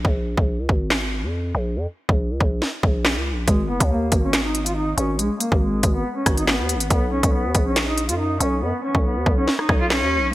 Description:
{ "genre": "hip hop, drill", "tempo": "140 BPM", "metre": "4/4", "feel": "half-time", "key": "unclear", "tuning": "A4 = 439 Hz", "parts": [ { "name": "growling 808-style bass", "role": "bass", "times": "0.0-10.3 s", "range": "Gb1 to F#2", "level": "-23 LUFS", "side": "equal", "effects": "none" }, { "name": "drill drum kit", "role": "drums", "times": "0.0-10.0 s", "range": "handclaps, hi-hat, kick drum, rim click, snare drum", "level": "-20 LUFS", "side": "equal", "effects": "none" }, { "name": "bright cello", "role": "melody", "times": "3.5-10.3 s", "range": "Ab3 to F4", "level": "-23 LUFS", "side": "equal", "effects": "low-pass filter, digital delay" } ], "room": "light reverb", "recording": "bright 1980s-style digital production", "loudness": "-18 LUFS", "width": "side -16 dB against mid", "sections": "0.0-10.3 A section", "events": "break 0.0-3.5; hi-hats muted 8.6-10.3", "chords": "0.0 N.C.; 3.5 Abm; 6.9 Bsus2" }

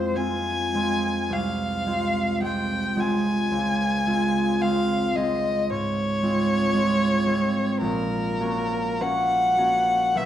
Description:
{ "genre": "classical, romantic duo for violin and harp", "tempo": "48-58 BPM", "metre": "4/4", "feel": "rubato", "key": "unclear", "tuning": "A4 = 439 Hz", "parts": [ { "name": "rich violin", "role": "melody", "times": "0.0-10.3 s", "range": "Bb4 to Ab5", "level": "-24 LUFS", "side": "left 2 dB", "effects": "none" }, { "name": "concert harp", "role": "accompaniment", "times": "0.0-10.3 s", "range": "Bb1 to Gb4", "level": "-24 LUFS", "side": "right 1 dB", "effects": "none" } ], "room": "wet recital hall reverb, RT60 1.2 s", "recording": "none", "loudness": "-21 LUFS", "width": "side -11 dB against mid", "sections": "0.0-10.3 A section", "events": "none", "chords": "0.0 Fm; 3.5 Dbmaj7; 7.8 Gb/Bb" }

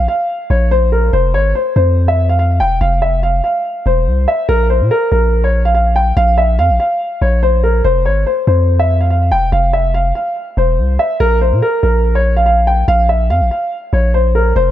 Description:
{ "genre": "hip hop, drill", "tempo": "143 BPM", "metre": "4/4", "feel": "half-time", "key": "unclear", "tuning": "A4 = 438 Hz", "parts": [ { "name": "dark grand piano", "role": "melody", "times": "0.0-14.7 s", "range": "Bb4 to G5", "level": "-14 LUFS", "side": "equal", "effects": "none" }, { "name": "long sustained 808-style bass", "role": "bass", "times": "0.0-14.7 s", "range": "E1 to Bb2", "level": "-13 LUFS", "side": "equal", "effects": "none" } ], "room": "small room ambience", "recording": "none", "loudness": "-11 LUFS", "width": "side -12 dB against mid", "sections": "0.0-14.7 A section", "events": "none", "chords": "0.0 Bb5; 1.1 F5; 4.5 Bb5; 7.8 F5; 11.2 Bb5" }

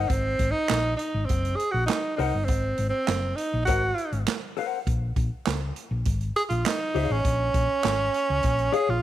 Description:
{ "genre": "funk", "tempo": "101 BPM", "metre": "4/4", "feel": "straight", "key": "unclear", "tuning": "A4 = 441 Hz", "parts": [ { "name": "warm tenor saxophone", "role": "melody", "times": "0.0-9.0 s", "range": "C4 to Ab4", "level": "-26 LUFS", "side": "right 2 dB", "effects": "slapback echo" }, { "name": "mellow electric guitar", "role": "accompaniment", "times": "0.0-8.9 s", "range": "Ab4 to Gb5", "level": "-29 LUFS", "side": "left 12 dB", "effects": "lush chorus" }, { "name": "hollow-body short-scale fingered electric bass", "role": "bass", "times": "0.0-9.0 s", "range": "Gb1 to Db2", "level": "-27 LUFS", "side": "left 1 dB", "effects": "none" }, { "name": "swinging big-band drum kit", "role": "drums", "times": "0.1-8.9 s", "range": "handclaps, hi-hat, kick drum, snare drum", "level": "-28 LUFS", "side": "right 2 dB", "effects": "none" } ], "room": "light reverb, small room reverb", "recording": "1960s-style stereo", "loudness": "-23 LUFS", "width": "side -13 dB against mid", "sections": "0.1-9.0 A section", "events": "none", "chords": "0.1 Ab9; 4.9 Bbm7" }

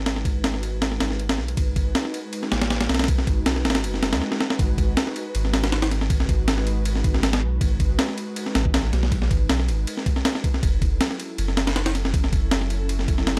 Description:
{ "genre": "drum and bass, jungle", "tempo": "159 BPM", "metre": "4/4", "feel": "straight", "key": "G# phrygian", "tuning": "A4 = 440 Hz", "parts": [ { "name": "soft dub sub bass", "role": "bass", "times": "0.0-13.4 s", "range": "F#1 to D#2", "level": "-27 LUFS", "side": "equal", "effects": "none" }, { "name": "ethereal airy pad", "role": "sustained chords", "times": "0.1-13.4 s", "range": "F#3 to B4", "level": "-35 LUFS", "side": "equal", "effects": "ensemble chorus, built-in reverb" }, { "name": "breakbeat sampler-style drum kit", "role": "drums", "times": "0.1-13.4 s", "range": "kick drum, ride cymbal, snare drum", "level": "-25 LUFS", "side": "equal", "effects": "none" } ], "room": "little or no reverb", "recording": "dry, gritty hardware recording", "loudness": "-23 LUFS", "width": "mono", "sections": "0.0-4.6 A section; 4.6-13.4 B section", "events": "build-up 0.0-4.6; filter sweep on ambient pad 0.0-4.6; drum fill 4.2-4.6; drop 4.6-13.4", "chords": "0.0 G#m7; 10.6 F#m7" }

